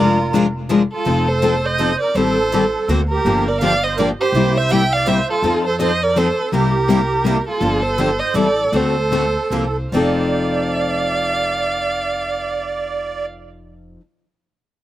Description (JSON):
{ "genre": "acoustic string swing (jazz manouche)", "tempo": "140-165 BPM", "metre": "3/4", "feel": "swing 61% on 8ths", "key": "F mixolydian", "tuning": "A4 = 436 Hz", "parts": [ { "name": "warm violin", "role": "melody", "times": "0.0-13.3 s", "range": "A4 to G5", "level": "-20 LUFS", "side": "right 1 dB", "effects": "none" }, { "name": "musette accordion", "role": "second line", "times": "0.0-13.3 s", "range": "F4 to E5", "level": "-22 LUFS", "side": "right 4 dB", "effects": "slapback echo" }, { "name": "picked steel-string acoustic guitar", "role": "accompaniment", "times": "0.0-14.0 s", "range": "C3 to C5", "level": "-19 LUFS", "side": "left 4 dB", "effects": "none" }, { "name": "picked steel-string acoustic guitar", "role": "accompaniment", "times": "0.0-14.0 s", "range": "C3 to Bb4", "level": "-29 LUFS", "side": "right 5 dB", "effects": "slapback echo" }, { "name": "upright bass", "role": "bass", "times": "0.0-14.0 s", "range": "F1 to F2", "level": "-23 LUFS", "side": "equal", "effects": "none" } ], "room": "light reverb", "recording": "recorded outdoors, with no room sound", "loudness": "-15 LUFS", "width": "side -13 dB against mid", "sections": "0.0-7.6 A section; 7.6-9.9 B section; 9.9-12.5 C section", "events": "slowing down 7.6-9.9", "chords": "0.0 Bb7; 1.1 F7; 2.2 Am7b5; 2.9 Daug7; 3.3 Gm7; 4.3 C7; 5.4 F7; 6.5 C7; 7.6 Gm9; 8.3 Am7; 8.7 D7; 9.5 C7sus4; 9.9 F6" }